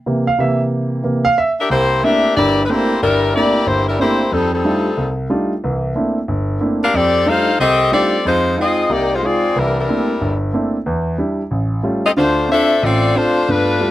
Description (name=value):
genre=jazz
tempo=183 BPM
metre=4/4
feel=swing 63% on 8ths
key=C major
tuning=A4 = 440 Hz
part: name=clear grand piano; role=accompaniment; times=0.1-13.9 s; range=G1 to F5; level=-17 LUFS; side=right 1 dB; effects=none
part: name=warm saxophone section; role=melody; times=1.6-13.9 s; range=G3 to F5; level=-15 LUFS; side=left 2 dB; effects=none
room=light reverb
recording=dry, close 1970s-style studio recording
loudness=-14 LUFS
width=side -14 dB against mid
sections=0.0-1.7 A section; 1.7-13.9 B section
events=grand piano solo 0.0-1.7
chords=0.0 C7; 1.7 C13; 4.3 F13; 5.6 C13; 6.9 F13; 8.2 Fm7; 9.6 C13; 10.9 Em7; 11.5 A7b13; 12.2 Dm7